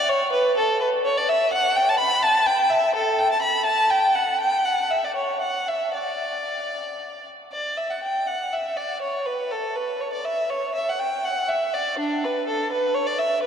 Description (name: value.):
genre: classical, baroque-style suite movement for unaccompanied violin.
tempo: 75-85 BPM (dotted quarters).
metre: 6/8.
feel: rubato.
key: D major, B minor from 7.5 s.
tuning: A4 = 441 Hz.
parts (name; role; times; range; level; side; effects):
rich violin; solo; 0.0-13.5 s; D4 to B5; -20 LUFS; equal; none.
room: wet cathedral reverb, RT60 5.2 s.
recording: dark, warm production.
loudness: -20 LUFS.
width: side -8 dB against mid.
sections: 0.0-7.5 A section; 7.5-13.5 A section.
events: none.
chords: none.